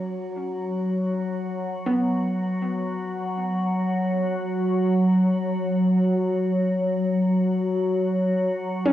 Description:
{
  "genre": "ambient",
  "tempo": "free time",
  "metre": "none",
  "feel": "none",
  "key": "unclear",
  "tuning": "A4 = 441 Hz",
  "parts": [
    { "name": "soft round pluck", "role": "arpeggios", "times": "0.0-8.9 s", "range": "B3 to C#4", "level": "-25 LUFS", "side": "equal", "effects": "wide subtle chorus, cassette tape, analog delay, shimmer reverb" },
    { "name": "organ-like drone", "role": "drone", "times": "0.0-8.9 s", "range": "F#3", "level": "-22 LUFS", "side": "equal", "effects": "ensemble chorus, built-in reverb, phaser, cassette tape" }
  ],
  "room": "wet small room reverb, RT60 0.5 s",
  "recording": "home recording on cassette",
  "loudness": "-21 LUFS",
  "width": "side -12 dB against mid",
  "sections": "0.0-8.9 A section",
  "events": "none",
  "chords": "0.0 F#5",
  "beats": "free time"
}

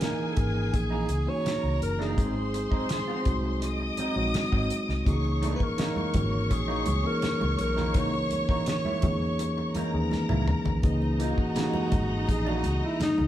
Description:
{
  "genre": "lush 1970s-style soul",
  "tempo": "83 BPM",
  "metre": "4/4",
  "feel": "straight",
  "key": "C# dorian",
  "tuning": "A4 = 440 Hz",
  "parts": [
    { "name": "breathy alto saxophone", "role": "melody", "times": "0.0-13.3 s", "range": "D#4 to C#5", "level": "-33 LUFS", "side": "right 1 dB", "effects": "none" },
    { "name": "warm studio string section", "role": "second line", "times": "0.0-13.3 s", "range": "D#4 to D#6", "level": "-34 LUFS", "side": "left 1 dB", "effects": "none" },
    { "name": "mellow tine electric piano", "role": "accompaniment", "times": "0.0-13.3 s", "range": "D#3 to A#4", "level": "-31 LUFS", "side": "left 1 dB", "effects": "none" },
    { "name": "electric guitar through a small old amp", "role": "riff", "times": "0.0-13.2 s", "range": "E3 to F#4", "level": "-36 LUFS", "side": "right 3 dB", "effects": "none" },
    { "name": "damped 70s drum kit", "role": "drums", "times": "0.0-13.2 s", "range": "hi-hat, kick drum, snare drum, toms", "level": "-29 LUFS", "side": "equal", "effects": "none" },
    { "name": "vintage muted fingered electric bass", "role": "bass", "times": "0.4-13.3 s", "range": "F#1 to E2", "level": "-30 LUFS", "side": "equal", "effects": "none" },
    { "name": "congas", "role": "percussion", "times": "5.1-13.3 s", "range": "none", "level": "-35 LUFS", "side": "right 1 dB", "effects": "none" }
  ],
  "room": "wet large studio reverb, RT60 0.9 s",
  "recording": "band playing live in one room",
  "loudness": "-24 LUFS",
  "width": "side -12 dB against mid",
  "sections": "0.0-10.8 A section; 10.8-13.3 B section",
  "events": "drum fill 10.1-10.8; alto saxophone solo 10.8-13.3",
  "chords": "0.0 C#m69; 2.2 G#7; 5.1 C#m69",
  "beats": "0.01 0.73 1.45 | 2.18 2.90 3.62 4.34 | 5.06 5.79 6.51 7.23 | 7.95 8.67 9.40 10.12 | 10.84 11.56 12.28 13.01"
}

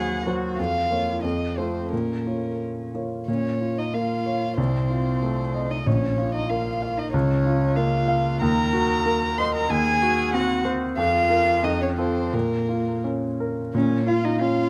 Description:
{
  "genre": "quick classical-period movement for piano trio",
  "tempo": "84-96 BPM",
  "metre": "2/4",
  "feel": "rubato",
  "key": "Bb minor",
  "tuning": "A4 = 435 Hz",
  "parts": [
    { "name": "dark violin", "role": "melody", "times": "0.0-14.7 s", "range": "Bb4 to C6", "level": "-29 LUFS", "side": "equal", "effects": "none" },
    { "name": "dark cello", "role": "second line", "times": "0.0-14.7 s", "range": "Bb3 to C5", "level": "-32 LUFS", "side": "equal", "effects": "none" },
    { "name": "clear grand piano", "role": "accompaniment", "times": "0.0-14.7 s", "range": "Bb1 to F5", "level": "-26 LUFS", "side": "equal", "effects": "none" }
  ],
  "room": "light reverb",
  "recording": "close, detailed microphones",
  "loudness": "-23 LUFS",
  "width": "mono",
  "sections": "0.0-3.3 A section; 3.3-13.7 B section",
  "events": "none",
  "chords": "0.0 Cdim/Eb; 0.6 Bbm/F; 1.2 F7; 1.9 Bbm; 4.6 F7/C; 5.9 Bb5; 7.1 Bbm/Db; 8.4 Ebm; 9.7 Cdim/Eb; 11.0 Bb5/F; 11.6 F; 12.3 Bbm",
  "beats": "| 0.58 1.23 | 1.92 2.60 | 3.28 3.94 | 4.58 5.22 | 5.86 6.50 | 7.13 7.76 | 8.41 9.06 | 9.70 10.34 | 10.98 11.64 | 12.34 13.05 | 13.74 14.40"
}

